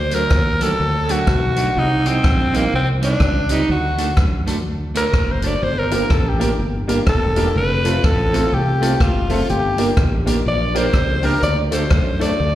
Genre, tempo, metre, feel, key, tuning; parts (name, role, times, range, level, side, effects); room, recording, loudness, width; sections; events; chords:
ska; 124 BPM; 4/4; swing 61% on 8ths; G harmonic minor; A4 = 443 Hz
raspy alto saxophone; melody; 0.0-12.6 s; Bb3 to D5; -20 LUFS; equal; slapback echo, plate reverb
woody fretless electric bass; bass; 0.0-12.6 s; E1 to F#2; -20 LUFS; equal; ensemble chorus
clean electric guitar; accompaniment; 0.1-12.3 s; F#3 to Bb4; -25 LUFS; right 5 dB; plate reverb, slapback echo
swinging big-band drum kit; drums; 0.1-12.3 s; hi-hat, kick drum, rim click; -20 LUFS; equal
dark upright piano; stabs; 5.9-12.5 s; A3 to Bb4; -24 LUFS; left 3 dB; slapback echo, plate reverb
light reverb; live gig heard through the venue's PA, recital hall reverb; -15 LUFS; side -13 dB against mid
0.0-12.6 A section
alto saxophone solo 0.0-12.6
0.0 D; 1.8 Cm; 3.7 D; 5.6 Gm; 7.6 F; 9.5 Gm; 11.4 D